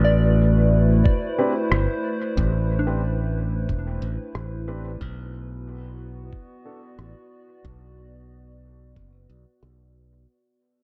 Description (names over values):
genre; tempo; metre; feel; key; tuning
ambient dub; 91 BPM; 4/4; straight; unclear; A4 = 442 Hz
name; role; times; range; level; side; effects
warbly tape-like pad; sustained chords; 0.0-10.3 s; A3 to D5; -32 LUFS; equal; chorus, built-in reverb
soft synth bell; arpeggios; 0.0-5.0 s; D4 to D5; -32 LUFS; equal; chorus, phaser, low-pass filter, dub echo
modern bright fingered electric bass; bass; 0.0-10.3 s; E1 to B1; -24 LUFS; equal; none
electronic kick drum; drums; 1.1-9.1 s; none; -25 LUFS; equal; studio reverb
dark upright piano; stabs; 1.4-6.8 s; C4 to B4; -31 LUFS; equal; low-pass filter, dub echo
electronic rim click; drums; 1.7-9.8 s; none; -30 LUFS; equal; low-pass filter on perc, studio reverb, low-pass filter on snare, dub echo
room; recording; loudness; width
light reverb, digital ambience; dark, warm production; -22 LUFS; mono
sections
0.0-10.3 A section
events
fade-out 0.0-10.3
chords
0.0 Am11; 5.0 Bm